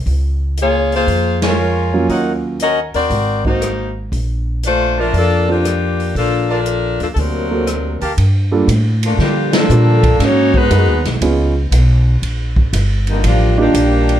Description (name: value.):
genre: jazz, big band swing.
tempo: 118 BPM.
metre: 4/4.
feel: swing 68% on 8ths.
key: Bb major, G minor from 8.2 s.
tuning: A4 = 440 Hz.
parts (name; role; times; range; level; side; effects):
upright bass; bass; 0.0-14.2 s; G1 to D3; -16 LUFS; equal; none.
swinging big-band drum kit; drums; 0.1-14.2 s; hi-hat, kick drum, ride cymbal, rim click, snare drum; -21 LUFS; equal; none.
bright saxophone section; melody; 0.6-14.2 s; D3 to Eb5; -17 LUFS; left 3 dB; none.
clear trumpet section; stabs; 1.4-8.1 s; Eb4 to A5; -21 LUFS; right 2 dB; none.
warm concert grand piano; accompaniment; 1.9-13.7 s; Gb3 to Bb4; -18 LUFS; right 3 dB; none.
mellow trombone section; second line; 7.2-14.2 s; G2 to A4; -19 LUFS; right 4 dB; none.
room: light reverb.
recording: dark, warm production.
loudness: -13 LUFS.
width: side -11 dB against mid.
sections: 0.0-8.2 A section; 8.2-14.2 B section.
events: band accent 1.3, 9.4.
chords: 0.1 Db6; 2.1 Ebm7; 3.1 Ab9; 4.1 Bbmaj7; 7.2 D7b13; 8.2 Gm9; 10.2 Abm7; 11.2 C#9; 12.2 Ebmaj7.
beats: | 0.07 0.57 1.08 1.59 | 2.10 2.60 3.11 3.62 | 4.13 4.63 5.14 5.65 | 6.15 6.66 7.17 7.67 | 8.18 8.68 9.19 9.70 | 10.20 10.71 11.21 11.72 | 12.23 12.73 13.24 13.75.